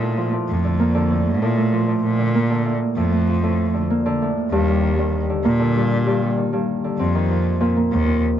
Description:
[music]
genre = folktronica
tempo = 97 BPM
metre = 4/4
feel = straight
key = Bb major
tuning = A4 = 440 Hz
[part]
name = Celtic harp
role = arpeggios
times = 0.0-8.4 s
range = G2 to Eb4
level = -20 LUFS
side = equal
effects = tape echo
[part]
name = rich cello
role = bass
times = 0.0-8.2 s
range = Eb2 to Bb2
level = -21 LUFS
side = equal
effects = none
[sound]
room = light reverb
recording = dark, warm production, nothing above 7.7 kHz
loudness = -17 LUFS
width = side -10 dB against mid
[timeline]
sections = 0.0-8.4 A section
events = none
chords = 0.0 Bbmaj7; 4.5 Ebmaj7; 7.0 F7sus4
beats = 0.18 0.80 1.42 | 2.04 2.66 3.28 3.90 | 4.51 5.13 5.75 6.37 | 6.99 7.61 8.23

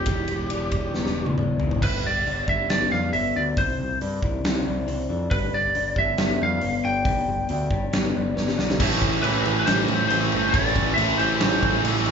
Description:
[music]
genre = quiet-loud alternative rock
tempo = 138 BPM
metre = 4/4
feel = straight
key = A minor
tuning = A4 = 440 Hz
[part]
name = lightly driven lead guitar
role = melody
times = 0.0-11.8 s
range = G4 to G5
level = -25 LUFS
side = equal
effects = none
[part]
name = electric guitar through a small old amp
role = arpeggios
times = 0.0-8.8 s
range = C3 to G4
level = -29 LUFS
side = left 5 dB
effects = none
[part]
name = growling picked electric bass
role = bass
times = 0.0-12.1 s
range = E1 to G2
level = -29 LUFS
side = equal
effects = overdrive
[part]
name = big rock drum kit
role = drums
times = 0.1-12.1 s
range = crash cymbal, hi-hat, kick drum, ride cymbal, snare drum, toms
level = -25 LUFS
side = equal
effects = none
[part]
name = distorted electric guitar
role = riff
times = 8.8-12.1 s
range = A2 to E4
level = -28 LUFS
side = left 8 dB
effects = overdrive
[part]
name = fuzz guitar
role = riff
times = 8.8-12.1 s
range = A2 to A3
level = -24 LUFS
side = right 8 dB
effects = distortion
[sound]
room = wet large studio reverb, RT60 0.9 s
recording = band playing live in one room, nothing above 7.6 kHz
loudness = -20 LUFS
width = side -6 dB against mid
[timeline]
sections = 0.0-1.8 A section; 1.8-8.8 B section; 8.8-12.1 C section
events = drum fill 0.9-1.8, 8.4-8.8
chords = 0.1 Em7; 1.8 G; 3.6 Cadd9; 5.3 G; 8.8 Am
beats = | 0.08 0.51 0.95 1.39 | 1.82 2.26 2.69 3.13 | 3.57 4.00 4.44 4.87 | 5.31 5.75 6.18 6.62 | 7.05 7.49 7.92 8.36 | 8.80 9.23 9.67 10.10 | 10.54 10.98 11.41 11.85

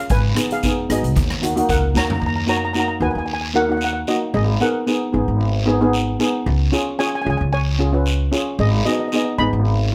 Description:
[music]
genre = calypso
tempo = 113 BPM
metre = 4/4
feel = swing 54% on 16ths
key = Eb minor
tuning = A4 = 440 Hz
[part]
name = steel pan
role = melody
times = 0.0-9.9 s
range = Gb4 to Cb6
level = -25 LUFS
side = equal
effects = none
[part]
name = steel pan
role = accompaniment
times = 0.0-9.9 s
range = Bb3 to Cb5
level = -24 LUFS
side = equal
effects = none
[part]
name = upright bass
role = bass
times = 0.1-9.9 s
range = Ab1 to Eb2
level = -22 LUFS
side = equal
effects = none
[part]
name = street-band drum kit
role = drums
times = 0.1-2.2 s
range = hi-hat, kick drum, rim click, snare drum, toms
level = -26 LUFS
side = equal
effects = none
[part]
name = guiro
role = percussion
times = 0.1-9.9 s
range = none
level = -32 LUFS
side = equal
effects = none
[sound]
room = moderate small room reverb, RT60 0.5 s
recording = none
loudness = -19 LUFS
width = mono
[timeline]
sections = 0.0-2.2 A section; 2.2-9.9 A section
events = drum fill 2.0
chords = 0.1 Abm; 1.2 Ebm; 4.3 Abm; 6.5 Db; 8.6 Abm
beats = | 0.10 0.63 1.16 1.69 | 2.22 2.75 3.28 3.81 | 4.34 4.87 5.40 5.93 | 6.46 7.00 7.53 8.06 | 8.59 9.12 9.65

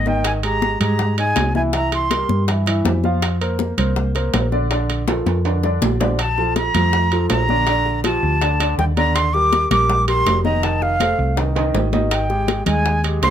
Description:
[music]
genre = latin, salsa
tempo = 162 BPM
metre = 4/4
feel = straight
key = Bb major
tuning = A4 = 441 Hz
[part]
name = breathy mellow silver concert flute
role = melody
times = 0.0-2.5, 6.2-13.3 s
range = F5 to D6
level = -20 LUFS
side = equal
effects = none
[part]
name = hollow-body short-scale fingered electric bass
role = bass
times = 0.0-13.3 s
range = F1 to Ab2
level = -20 LUFS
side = equal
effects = none
[part]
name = warm grand piano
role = accompaniment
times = 0.1-13.3 s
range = D3 to F5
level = -23 LUFS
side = right 1 dB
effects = none
[part]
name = bongos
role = percussion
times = 0.1-13.3 s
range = none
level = -28 LUFS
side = left 6 dB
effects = none
[part]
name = congas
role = percussion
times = 0.1-13.3 s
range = none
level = -26 LUFS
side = left 4 dB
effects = none
[part]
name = timbales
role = percussion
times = 0.2-13.3 s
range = none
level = -26 LUFS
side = right 6 dB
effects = none
[sound]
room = light reverb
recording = close, detailed microphones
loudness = -16 LUFS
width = side -9 dB against mid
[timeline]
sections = 0.0-6.2 A section; 6.2-13.3 A section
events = drum fill 5.1-6.2, 11.4-12.1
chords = 0.3 Abmaj7; 1.7 C7; 3.2 Fsus4; 4.7 Bbmaj7; 7.7 Gm7/Bb; 9.2 Ebmaj7; 10.6 F7; 12.1 Abmaj7(no3)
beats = | 0.25 0.62 0.99 1.37 | 1.74 2.11 2.48 2.85 | 3.22 3.60 3.97 4.34 | 4.71 5.08 5.45 5.82 | 6.19 6.56 6.93 7.30 | 7.67 8.04 8.41 8.79 | 9.15 9.53 9.90 10.27 | 10.64 11.01 11.38 11.75 | 12.12 12.49 12.86 13.23

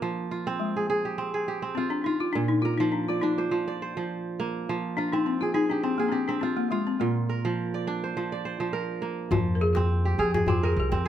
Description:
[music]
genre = west african traditional, West African string and xylophone music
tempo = 103 BPM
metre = 4/4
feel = swing 54% on 16ths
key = F dorian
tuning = A4 = 440 Hz
[part]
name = kora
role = arpeggios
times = 0.0-11.1 s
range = Bb2 to D5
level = -28 LUFS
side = right 3 dB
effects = none
[part]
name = balafon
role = melody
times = 0.6-11.1 s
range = Ab3 to Bb4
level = -27 LUFS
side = left 3 dB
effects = slapback echo
[part]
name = upright bass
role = bass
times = 9.3-11.1 s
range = C2 to F2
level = -25 LUFS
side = left 1 dB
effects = none
[part]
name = djembe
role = percussion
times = 9.3-11.0 s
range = none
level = -29 LUFS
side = left 4 dB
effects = none
[sound]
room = moderate studio reverb, RT60 0.6 s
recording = faint mains hum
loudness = -25 LUFS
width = side -10 dB against mid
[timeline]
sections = 0.0-9.3 A section; 9.3-11.1 B section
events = balafon solo 9.3-11.1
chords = 0.0 Fm; 2.3 Bb; 4.7 Fm; 7.0 Bb; 9.3 Fm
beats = | 0.01 0.60 1.18 1.76 | 2.34 2.93 3.51 4.09 | 4.67 5.25 5.83 6.42 | 7.00 7.58 8.16 8.74 | 9.32 9.89 10.47 11.05

